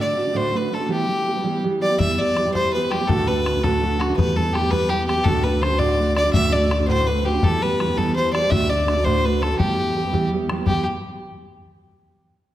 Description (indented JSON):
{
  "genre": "celtic folk, Celtic jig",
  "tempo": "111 BPM (dotted quarters)",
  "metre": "6/8",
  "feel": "straight",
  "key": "E minor",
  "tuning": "A4 = 439 Hz",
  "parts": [
    { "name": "clear fiddle", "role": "melody", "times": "0.0-10.8 s", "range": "F#4 to E5", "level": "-22 LUFS", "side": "left 1 dB", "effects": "none" },
    { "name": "fingerpicked steel-string acoustic guitar", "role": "accompaniment", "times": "0.0-10.8 s", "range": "D2 to G4", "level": "-23 LUFS", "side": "right 3 dB", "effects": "none" },
    { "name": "upright bass", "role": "bass", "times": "2.0-10.9 s", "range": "D2 to E2", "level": "-26 LUFS", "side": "left 1 dB", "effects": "none" },
    { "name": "bodhran", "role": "percussion", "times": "2.0-10.8 s", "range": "none", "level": "-26 LUFS", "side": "left 2 dB", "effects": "none" }
  ],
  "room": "wet recital hall reverb, RT60 1.8 s",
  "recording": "none",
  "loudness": "-18 LUFS",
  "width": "side -13 dB against mid",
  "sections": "0.0-2.0 A section; 2.0-10.7 A section; 10.7-11.7 B section",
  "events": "none",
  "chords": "0.0 D; 0.9 Em; 3.1 D; 4.2 Em; 5.3 D; 7.4 Em; 8.5 D; 9.6 Em"
}